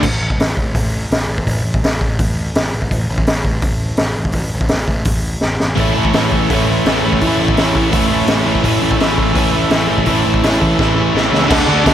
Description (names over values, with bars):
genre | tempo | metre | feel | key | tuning
garage rock duo or trio | 168 BPM | 4/4 | straight | A major | A4 = 439 Hz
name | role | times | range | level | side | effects
combo organ | sustained chords | 0.0, 5.8-11.9 s | E4 to E5 | -26 LUFS | equal | none
crunchy overdriven guitar | riff | 0.0, 5.8-11.9 s | A2 to A4 | -14 LUFS | equal | none
fuzz picked electric bass | bass | 0.0-11.9 s | A1 to D2 | -20 LUFS | equal | overdrive
raw garage drum kit | drums | 0.0-11.9 s | crash cymbal, hi-hat, kick drum, snare drum | -16 LUFS | equal | none
room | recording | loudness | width
little or no reverb | none | -13 LUFS | side -11 dB against mid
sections
0.0-11.5 A section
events
drum fill 5.4-5.8, 10.8-11.5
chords
0.0 A